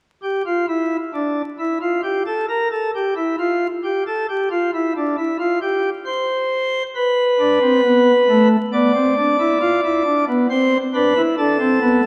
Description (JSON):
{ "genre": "classical, baroque-style 4-part fugue for pipe organ", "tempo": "68 BPM", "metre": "4/4", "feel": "straight", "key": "C major", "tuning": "A4 = 439 Hz", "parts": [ { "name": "pipe organ, sparkling flutes", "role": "solo", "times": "0.2-12.1 s", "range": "A3 to D5", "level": "-18 LUFS", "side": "equal", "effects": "none" } ], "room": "wet concert hall reverb, RT60 2.3 s", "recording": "dark, warm production, vinyl crackle", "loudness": "-18 LUFS", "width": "mono", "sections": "0.0-12.1 A section", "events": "none", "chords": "0.0 N.C.; 7.0 Amadd9; 8.7 Bmadd11; 10.5 C" }